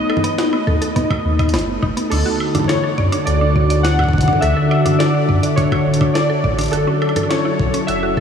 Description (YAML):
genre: IDM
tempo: 104 BPM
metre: 4/4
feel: straight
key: D major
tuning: A4 = 440 Hz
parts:
  - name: warbly lo-fi synth keys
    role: melody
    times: 0.0-8.2 s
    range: A4 to F#5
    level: -21 LUFS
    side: equal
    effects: chorus, analog delay
  - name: glassy FM pad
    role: sustained chords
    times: 0.0-8.2 s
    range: D3 to A4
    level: -19 LUFS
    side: left 1 dB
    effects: ensemble chorus, built-in reverb, sidechain pumping
  - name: mallet-like synth pluck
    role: arpeggios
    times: 0.1-8.2 s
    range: B3 to D#5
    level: -24 LUFS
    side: right 1 dB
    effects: chorus, analog delay
  - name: jungle sampler-style drum kit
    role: drums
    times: 0.1-8.0 s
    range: congas, crash cymbal, hi-hat, snare drum, woodblock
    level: -24 LUFS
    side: equal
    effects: small room ambience
  - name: warm sub bass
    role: bass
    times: 0.7-8.2 s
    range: D1 to F#2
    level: -19 LUFS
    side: equal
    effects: none
  - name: electronic kick drum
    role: drums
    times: 0.7-8.2 s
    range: none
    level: -20 LUFS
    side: equal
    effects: small room ambience
room: wet huge ambient reverb, RT60 8.0 s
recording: dreamy mix soaked in reverb, studio reverb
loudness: -14 LUFS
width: side -7 dB against mid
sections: 0.0-8.2 A section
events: none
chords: 0.0 B7; 2.1 D; 6.7 F#m7